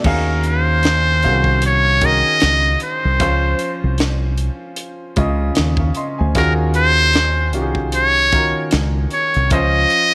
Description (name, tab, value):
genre	R&B, neo-soul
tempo	76 BPM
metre	4/4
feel	swing 57% on 16ths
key	Eb dorian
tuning	A4 = 440 Hz
part	warm grand piano	accompaniment	0.0-10.1 s	Db3 to Db6	-25 LUFS	equal	none
part	tight funk drum kit	drums	0.0-10.1 s	crash cymbal, hi-hat, kick drum, snare drum	-24 LUFS	equal	none
part	trumpet with metal mute	melody	0.1-10.1 s	Bb4 to Eb5	-18 LUFS	equal	none
part	deep dub fingered electric bass	bass	0.1-9.8 s	C2 to Eb2	-20 LUFS	equal	none
room	light reverb, studio reverb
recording	none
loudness	-16 LUFS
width	mono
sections	0.0-10.1 A section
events	none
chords	0.0 Ebm11; 3.2 Dbmaj7; 6.4 Ebm11; 9.5 Dbmaj7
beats	| 0.04 0.83 1.62 2.41 | 3.20 3.99 4.78 5.57 | 6.36 7.15 7.93 8.72 | 9.51